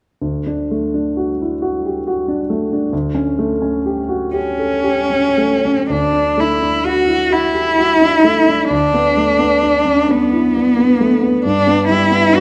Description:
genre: classical, romantic duo for cello and grand piano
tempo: 36-47 BPM (dotted quarters)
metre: 6/8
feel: rubato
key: D major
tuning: A4 = 441 Hz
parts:
  - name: warm grand piano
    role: accompaniment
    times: 0.2-12.4 s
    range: D2 to A4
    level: -20 LUFS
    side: equal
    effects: none
  - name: rich cello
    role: melody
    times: 4.4-12.4 s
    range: B3 to F#4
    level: -16 LUFS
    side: equal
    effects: none
room: moderate recital hall reverb, RT60 1.6 s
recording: none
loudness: -16 LUFS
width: mono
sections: 0.2-5.9 A section; 5.9-12.4 B section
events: none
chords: 0.2 D; 2.9 A7/D; 5.9 D; 8.7 Bm7/D; 11.4 G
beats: | 0.21 1.62 | 2.92 4.34 | 5.91 7.32 | 8.72 10.10 | 11.44

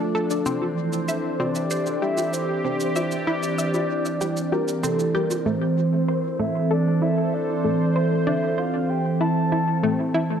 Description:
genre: ambient, sequencer-driven space music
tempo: 96 BPM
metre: 4/4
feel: straight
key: unclear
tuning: A4 = 440 Hz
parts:
  - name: soft octave-layered synth lead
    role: melody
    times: 0.0-10.1 s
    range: A4 to A5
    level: -27 LUFS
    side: equal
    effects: chorus, phaser, tape echo
  - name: sweeping resonant pad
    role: sustained chords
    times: 0.0-10.4 s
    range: E3 to C5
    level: -23 LUFS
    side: right 1 dB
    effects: chorus
  - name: analog pluck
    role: riff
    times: 0.1-10.4 s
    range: A3 to E5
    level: -28 LUFS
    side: left 1 dB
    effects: chorus, cassette tape, tape echo
  - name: cabasa and congas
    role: percussion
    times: 0.3-5.4 s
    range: none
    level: -33 LUFS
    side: equal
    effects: tape echo
room: wet spring reverb, RT60 2.3 s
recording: echo-heavy mix, cassette tape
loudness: -21 LUFS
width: side -8 dB against mid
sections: 0.0-5.5 A section; 5.5-10.4 B section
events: none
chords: 0.5 Cadd9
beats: | 0.46 1.08 1.71 2.33 | 2.96 3.58 4.21 4.83 | 5.46 6.08 6.71 7.33 | 7.96 8.59 9.21 9.84

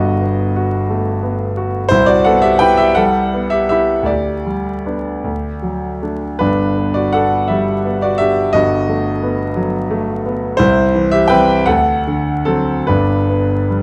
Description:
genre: classical, romantic character piece for solo piano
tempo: 47-60 BPM (dotted quarters)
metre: 6/8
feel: rubato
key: G major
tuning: A4 = 441 Hz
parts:
  - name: warm grand piano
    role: solo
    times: 0.0-13.8 s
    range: G1 to G5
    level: -16 LUFS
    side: equal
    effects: none
room: moderate recital hall reverb, RT60 1.4 s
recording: close, detailed microphones, vinyl crackle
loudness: -16 LUFS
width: mono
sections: 0.0-13.8 A section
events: none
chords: 0.0 B7/G; 1.9 Cmaj7; 4.1 G/D; 5.3 D; 6.4 G; 8.6 B7/G; 10.6 C; 11.7 D7; 12.9 G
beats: 0.91 | 1.93 2.99 | 4.09 5.25 | 6.41 7.51 | 8.56 9.57 | 10.59 11.68 | 12.87

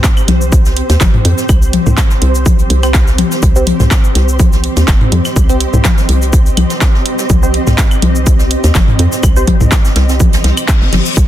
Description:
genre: minimal techno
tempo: 124 BPM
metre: 4/4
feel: swing 54% on 16ths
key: C minor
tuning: A4 = 436 Hz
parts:
  - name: electronic kick drum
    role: drums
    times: 0.0-11.3 s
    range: none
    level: -10 LUFS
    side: equal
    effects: overdrive
  - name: house drum kit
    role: drums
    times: 0.0-11.3 s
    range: cabasa, handclaps, hi-hat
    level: -19 LUFS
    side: equal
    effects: overdrive
  - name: jazz brush drum kit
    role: drums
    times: 0.0-11.3 s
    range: hi-hat, snare drum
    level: -25 LUFS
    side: right 2 dB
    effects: high-pass filter on hats, soft clipping on snare, high-pass filter on snare, high-pass filter on room
  - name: flickering grainy texture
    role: texture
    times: 0.0-11.3 s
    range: G4 to C5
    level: -26 LUFS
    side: right 2 dB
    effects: built-in reverb, sidechain pumping
  - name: granular cloud pad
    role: texture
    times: 0.0-11.3 s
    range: C4 to Eb5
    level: -20 LUFS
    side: right 2 dB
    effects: built-in reverb, sidechain pumping
  - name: electronic claves and toms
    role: percussion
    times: 0.2-11.0 s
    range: none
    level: -17 LUFS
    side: left 4 dB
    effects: none
  - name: hollow knocking FM bass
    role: bass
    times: 0.3-11.3 s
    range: G1 to F2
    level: -13 LUFS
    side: equal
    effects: sidechain pumping
  - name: filtered dub chord stab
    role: stabs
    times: 2.8-9.4 s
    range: C4 to C5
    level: -20 LUFS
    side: right 1 dB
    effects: phaser, ping-pong delay
  - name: reverse cymbal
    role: sound effects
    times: 10.4-11.2 s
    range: none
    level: -21 LUFS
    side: left 6 dB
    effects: none
room: digital ambience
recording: dense, heavily limited modern master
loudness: -8 LUFS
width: side -12 dB against mid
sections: 0.0-11.3 A section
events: reverse cymbal 10.4-11.2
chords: 0.0 C5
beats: 0.04 0.52 1.01 | 1.49 1.98 2.46 2.94 | 3.43 3.91 4.39 4.88 | 5.36 5.85 6.33 6.81 | 7.30 7.78 8.27 8.75 | 9.23 9.72 10.20 10.69 | 11.17

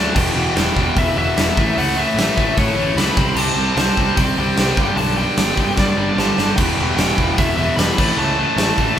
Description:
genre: punk rock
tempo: 150 BPM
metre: 4/4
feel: straight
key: E minor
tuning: A4 = 440 Hz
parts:
  - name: nasal lead guitar with a parked wah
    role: melody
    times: 0.0-9.0 s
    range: C#5 to B5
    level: -22 LUFS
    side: left 1 dB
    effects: overdrive
  - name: distorted electric guitar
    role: riff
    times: 0.0-9.0 s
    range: E2 to D4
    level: -22 LUFS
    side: left 7 dB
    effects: overdrive
  - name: distorted electric guitar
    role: riff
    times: 0.0-9.0 s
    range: E2 to D4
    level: -22 LUFS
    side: right 6 dB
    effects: distortion
  - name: overdriven semi-hollow guitar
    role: riff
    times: 0.0-0.2, 6.6-9.0 s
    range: A2 to E4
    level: -28 LUFS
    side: equal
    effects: none
  - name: fuzz picked electric bass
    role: bass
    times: 0.0-8.9 s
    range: E1 to A2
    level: -23 LUFS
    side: equal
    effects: overdrive
  - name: big rock drum kit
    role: drums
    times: 0.2-8.9 s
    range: crash cymbal, hi-hat, kick drum, snare drum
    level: -19 LUFS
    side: equal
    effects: none
room: light reverb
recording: band playing live in one room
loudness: -14 LUFS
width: side -10 dB against mid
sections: 0.2-9.0 A section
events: drum fill 0.0, 5.8-6.6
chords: 0.2 Em; 1.6 A; 3.2 C5; 4.8 G; 6.6 Em; 8.0 A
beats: | 0.16 0.56 0.96 1.37 | 1.77 2.17 2.57 2.97 | 3.37 3.77 4.17 4.57 | 4.97 5.38 5.78 6.18 | 6.58 6.98 7.38 7.78 | 8.18 8.58 8.98

